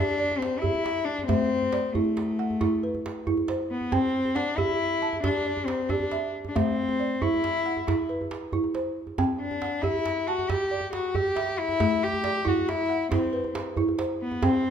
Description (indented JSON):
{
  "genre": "west african traditional, West African string and xylophone music",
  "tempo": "91 BPM (dotted quarters)",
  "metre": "12/8",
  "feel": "straight",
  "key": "unclear",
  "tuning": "A4 = 438 Hz",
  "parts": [
    { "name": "rich cello", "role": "melody", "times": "0.0-14.7 s", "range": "A3 to G4", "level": "-27 LUFS", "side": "left 3 dB", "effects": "none" },
    { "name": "balafon", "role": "arpeggios", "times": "0.0-14.7 s", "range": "A3 to A5", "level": "-28 LUFS", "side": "right 2 dB", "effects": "none" },
    { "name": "djembe", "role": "percussion", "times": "0.2-14.5 s", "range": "none", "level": "-32 LUFS", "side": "right 3 dB", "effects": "none" }
  ],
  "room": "moderate recital hall reverb, RT60 1.7 s",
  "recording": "minimal, uncompressed stereo recording",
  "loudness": "-24 LUFS",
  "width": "side -8 dB against mid",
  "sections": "0.0-14.7 A section",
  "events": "none",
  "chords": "0.0 C (rootless); 1.3 Am; 3.9 C; 6.6 Am; 9.2 C; 11.8 Am",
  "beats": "0.63 | 1.29 1.95 2.61 3.27 | 3.92 4.58 5.24 5.90 | 6.55 7.21 7.87 8.53 | 9.18 9.84 10.49 11.15 | 11.80 12.46 13.12 13.77 | 14.43"
}